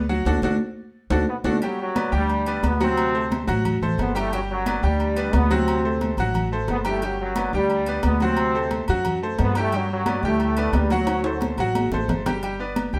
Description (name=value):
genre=latin, salsa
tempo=178 BPM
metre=4/4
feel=straight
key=G major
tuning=A4 = 440 Hz
part: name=bright grand piano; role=accompaniment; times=0.0-13.0 s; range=F#3 to G5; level=-28 LUFS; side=equal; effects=none
part: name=upright bass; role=bass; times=0.0-13.0 s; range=G1 to G2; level=-27 LUFS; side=equal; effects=none
part: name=congas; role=percussion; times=0.1-13.0 s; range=none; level=-32 LUFS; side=equal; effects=none
part: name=timbales and agogo bells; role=percussion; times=0.3-12.9 s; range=none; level=-33 LUFS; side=equal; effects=none
part: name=bright trombone section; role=melody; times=1.3-11.6 s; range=F#2 to C4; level=-28 LUFS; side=equal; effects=none
room=moderate studio reverb, RT60 0.8 s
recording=none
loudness=-23 LUFS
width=mono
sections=0.0-1.6 A section; 1.6-12.4 B section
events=band accent 0.3-1.6; drum fill 0.9-1.6, 11.1-12.4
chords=0.3 D; 1.6 Gmaj7; 3.0 D7; 4.3 Gmaj7; 5.7 D7; 7.0 Gmaj7; 8.4 D7; 9.7 Gmaj7; 11.1 D7; 12.4 G